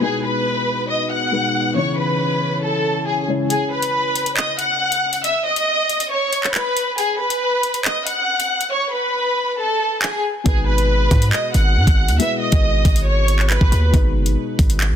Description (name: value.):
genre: hip hop, drill.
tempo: 138 BPM.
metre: 4/4.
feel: half-time.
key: G# phrygian.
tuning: A4 = 441 Hz.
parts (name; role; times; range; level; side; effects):
warm studio violin section; melody; 0.0-13.9 s; G#4 to F#6; -19 LUFS; equal; low-pass filter.
dark grand piano; accompaniment; 0.0-3.5, 10.4-15.0 s; B2 to C#5; -24 LUFS; left 4 dB; low-pass filter.
glass harmonica; sustained chords; 0.0-3.5 s; B3 to C#5; -29 LUFS; right 2 dB; none.
drill drum kit; drums; 3.5-14.9 s; handclaps, hi-hat, kick drum; -19 LUFS; equal; none.
hard-hitting 808-style bass; bass; 10.5-15.0 s; F#1 to G#2; -17 LUFS; equal; none.
room: studio reverb.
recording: dense, heavily limited modern master.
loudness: -16 LUFS.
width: side -9 dB against mid.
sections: 0.0-3.5 A section; 3.5-15.0 B section.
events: kick muted 3.5-10.5; hi-hats muted 8.7-10.5.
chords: 0.0 G#m; 1.8 C#m; 3.5 N.C.; 10.5 G#m; 12.2 E/G#; 13.9 G#m.